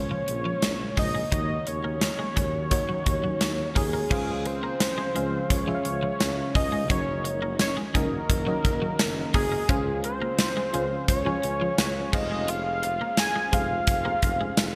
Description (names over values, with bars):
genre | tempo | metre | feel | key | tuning
1980s-style pop | 86 BPM | 4/4 | straight | Db major | A4 = 439 Hz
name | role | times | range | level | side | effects
fat analog lead | melody | 0.0-14.8 s | Ab4 to Ab5 | -31 LUFS | equal | delay
FM electric piano with tremolo | accompaniment | 0.0-14.8 s | Bb2 to Ab5 | -36 LUFS | equal | none
ethereal airy pad | sustained chords | 0.0-14.8 s | Db3 to Gb4 | -40 LUFS | equal | none
twelve-string electric guitar | riff | 0.1-14.6 s | F3 to F4 | -38 LUFS | equal | analog chorus
warm tuba | bass | 0.3-14.8 s | F1 to Eb2 | -35 LUFS | equal | none
gated 80s drum kit | drums | 0.3-14.7 s | crash cymbal, hi-hat, kick drum, snare drum, tambourine | -29 LUFS | equal | gated reverb
tambourine | percussion | 0.6-14.7 s | none | -44 LUFS | equal | none
room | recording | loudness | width
moderate lush hall reverb, RT60 2.7 s | bright 1980s-style digital production | -26 LUFS | mono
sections
0.0-4.1 A section; 4.1-14.8 B section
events
none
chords
0.0 Bbm7; 1.3 Ebm7; 4.1 Dbmaj7; 6.9 Gb6; 9.7 Dbmaj7; 12.1 Fm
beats
0.62 | 1.32 2.02 2.71 3.41 | 4.11 4.81 5.50 6.20 | 6.90 7.60 8.30 8.99 | 9.69 10.39 11.09 11.78 | 12.48 13.18 13.88 14.57